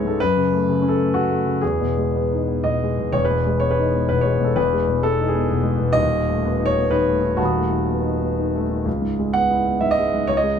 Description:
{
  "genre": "neoclassical minimalist piano",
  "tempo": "126 BPM",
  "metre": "3/4",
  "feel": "rubato",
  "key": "E major",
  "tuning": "A4 = 439 Hz",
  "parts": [
    { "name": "warm concert grand piano", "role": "solo", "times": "0.0-10.6 s", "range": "D#1 to D#6", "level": "-18 LUFS", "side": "left 1 dB", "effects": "none" }
  ],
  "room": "light reverb",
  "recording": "close, detailed microphones",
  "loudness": "-18 LUFS",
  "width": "side -7 dB against mid",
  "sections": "0.0-3.1 A section; 3.1-10.6 B section",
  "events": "none",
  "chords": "0.2 F#m; 1.6 Emaj7; 6.0 B7/D#; 8.9 C#m7",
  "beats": "| 0.18 0.65 1.12 | 1.62 2.12 2.63 | 3.13 3.62 4.10 | 4.57 5.04 5.51 | 5.98 6.45 6.92 | 7.39 7.88 8.37 | 8.86 9.33 9.80 | 10.27"
}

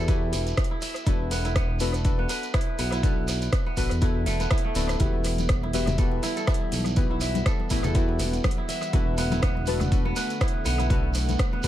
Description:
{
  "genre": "afro house",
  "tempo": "122 BPM",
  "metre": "4/4",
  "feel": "swing 56% on 16ths",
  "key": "E minor",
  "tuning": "A4 = 440 Hz",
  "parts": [
    { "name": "kora", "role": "arpeggios", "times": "0.0-11.7 s", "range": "A3 to E5", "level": "-32 LUFS", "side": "right 1 dB", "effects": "sidechain pumping, analog delay" },
    { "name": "deep mellow chord stab", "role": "stabs", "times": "0.0-11.7 s", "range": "B3 to B4", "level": "-33 LUFS", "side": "left 5 dB", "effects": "chorus, sidechain pumping, analog delay" },
    { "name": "smooth synth bass", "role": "bass", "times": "0.0-11.7 s", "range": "D1 to E2", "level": "-28 LUFS", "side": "equal", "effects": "sidechain pumping" },
    { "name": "afro-pop drum kit", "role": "drums", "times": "0.1-11.7 s", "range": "hi-hat, rim click", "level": "-34 LUFS", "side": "equal", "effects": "overdrive, analog delay" },
    { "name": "electronic kick drum", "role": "drums", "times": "0.1-11.7 s", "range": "none", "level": "-25 LUFS", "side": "equal", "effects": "overdrive" },
    { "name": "shekere", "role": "percussion", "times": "0.1-11.7 s", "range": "none", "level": "-37 LUFS", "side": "right 4 dB", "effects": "none" },
    { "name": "warm analog pad", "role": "sustained chords", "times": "5.0-11.7 s", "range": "D3 to F#5", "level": "-35 LUFS", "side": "right 1 dB", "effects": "chorus, sidechain pumping" },
    { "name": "congas", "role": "percussion", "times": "5.0-11.6 s", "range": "none", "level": "-34 LUFS", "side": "left 3 dB", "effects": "none" }
  ],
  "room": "light reverb, digital ambience",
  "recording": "echo-heavy mix",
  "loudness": "-22 LUFS",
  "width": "side -13 dB against mid",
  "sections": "0.0-11.7 A section",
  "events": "none",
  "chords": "0.0 Emadd9; 1.1 Bm7/E; 5.0 Emadd9; 8.9 Bm7/E",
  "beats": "0.08 0.57 | 1.06 1.56 2.05 2.54 | 3.03 3.52 4.02 4.51 | 5.00 5.49 5.98 6.47 | 6.97 7.46 7.95 8.44 | 8.93 9.43 9.92 10.41 | 10.90 11.39"
}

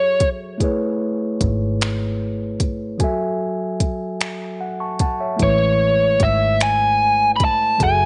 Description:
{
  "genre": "slow six-eight R&B",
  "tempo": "50 BPM (dotted quarters)",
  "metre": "6/8",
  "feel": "straight",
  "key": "A major",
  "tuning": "A4 = 440 Hz",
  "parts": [
    { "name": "biting lead guitar", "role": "melody", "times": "0.0-0.3, 5.4-8.1 s", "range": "C#5 to B5", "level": "-18 LUFS", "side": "equal", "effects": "overdrive, slapback echo" },
    { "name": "mellow tine electric piano", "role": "accompaniment", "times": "0.0-8.1 s", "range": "F#3 to C#6", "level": "-26 LUFS", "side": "equal", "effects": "none" },
    { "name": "vintage muted fingered electric bass", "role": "bass", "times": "0.0-8.1 s", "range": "F#1 to A1", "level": "-25 LUFS", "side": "equal", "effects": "none" },
    { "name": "smooth R&B drum kit", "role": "drums", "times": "0.2-8.0 s", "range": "finger snaps, hi-hat, kick drum", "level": "-24 LUFS", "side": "equal", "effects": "none" }
  ],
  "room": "light reverb",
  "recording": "nothing above 10.3 kHz",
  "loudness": "-20 LUFS",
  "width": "mono",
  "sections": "0.0-8.1 A section",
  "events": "tine electric piano fill 4.2-5.4",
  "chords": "0.0 F#m9; 0.6 Amaj9; 3.0 F#m9; 5.4 Amaj9",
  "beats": "| 0.60 1.80 | 3.00 4.20 | 5.40 6.60 | 7.80"
}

